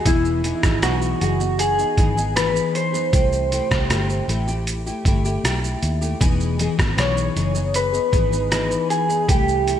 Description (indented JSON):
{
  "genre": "indie pop, bedroom pop",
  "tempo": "78 BPM",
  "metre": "4/4",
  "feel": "straight",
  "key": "E major",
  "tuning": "A4 = 441 Hz",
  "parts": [
    { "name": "electric guitar through a small old amp", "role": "melody", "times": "0.0-9.8 s", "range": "E4 to C#5", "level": "-21 LUFS", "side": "equal", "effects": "analog chorus" },
    { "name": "nylon-string guitar", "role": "accompaniment", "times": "0.0-9.8 s", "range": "C3 to G#4", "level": "-25 LUFS", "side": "left 4 dB", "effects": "analog chorus, vibrato effect" },
    { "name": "vintage muted fingered electric bass", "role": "bass", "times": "0.1-9.7 s", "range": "E1 to D#2", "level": "-23 LUFS", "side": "equal", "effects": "none" },
    { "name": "trip hop sampler-style drum kit", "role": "drums", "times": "0.1-9.8 s", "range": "hi-hat, kick drum, rim click, shaker", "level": "-22 LUFS", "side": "right 1 dB", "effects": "gated reverb" }
  ],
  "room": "moderate lush hall reverb, RT60 2.3 s",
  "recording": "bright 1980s-style digital production",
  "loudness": "-18 LUFS",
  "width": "side -10 dB against mid",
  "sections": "0.1-9.8 A section",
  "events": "none",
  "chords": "0.1 Emaj7; 3.1 C6; 6.2 Emaj7; 9.3 C6",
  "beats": "| 0.06 0.83 1.59 2.36 | 3.13 3.90 4.67 5.44 | 6.21 6.98 7.75 8.52 | 9.28"
}